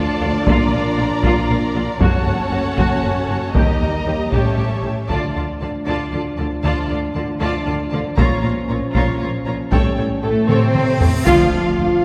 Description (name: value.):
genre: cinematic, epic orchestral film score.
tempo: 78 BPM (dotted quarters).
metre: 6/8.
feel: straight.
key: D minor from 5.1 s.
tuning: A4 = 441 Hz.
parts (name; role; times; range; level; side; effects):
warm studio violin section; melody; 0.0-12.0 s; A4 to Bb5; -32 LUFS; equal; none.
dark symphonic violin section; second line; 0.0-12.0 s; A4 to F5; -29 LUFS; equal; none.
clear symphonic viola section; accompaniment; 0.0-12.0 s; A3 to A4; -28 LUFS; equal; none.
dark French horn section; sustained chords; 0.0-12.0 s; F3 to F4; -26 LUFS; equal; none.
rich symphonic string section; sustained chords; 0.0-5.1, 11.3-12.0 s; C#4 to F#5; -30 LUFS; equal; none.
rich symphonic cello section; bass; 0.0-12.0 s; D2 to F4; -26 LUFS; equal; none.
rich symphonic double bass section; bass; 0.0-11.9 s; F#1 to Eb2; -25 LUFS; equal; none.
solo taiko drums; drums; 0.5-11.7 s; none; -23 LUFS; equal; none.
timpani; percussion; 5.1-5.8, 11.3-12.0 s; D3; -31 LUFS; equal; none.
cymbal swell and impact; sound effects; 10.7-12.0 s; none; -34 LUFS; equal; none.
bright trombone section; sustained chords; 10.2-12.0 s; A2 to F3; -27 LUFS; equal; none.
room: wet scoring stage reverb, RT60 1.6 s.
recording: heard from further back in the room.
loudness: -18 LUFS.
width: mono.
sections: 0.0-5.1 A section; 5.1-11.3 B section.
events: drum fill 10.5-11.3; cymbal swell 10.7-11.3; band accent 11.3-11.8; impact 11.3-12.0.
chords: 0.5 Bb; 2.0 F#m; 3.5 Eb; 4.3 A7; 5.1 Dm; 8.2 Bbm; 9.7 A7; 11.3 Dm.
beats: | 0.47 1.24 | 2.01 2.78 | 3.55 4.32 | 5.09 5.86 | 6.63 7.41 | 8.18 8.95 | 9.72 10.50 | 11.27 12.04.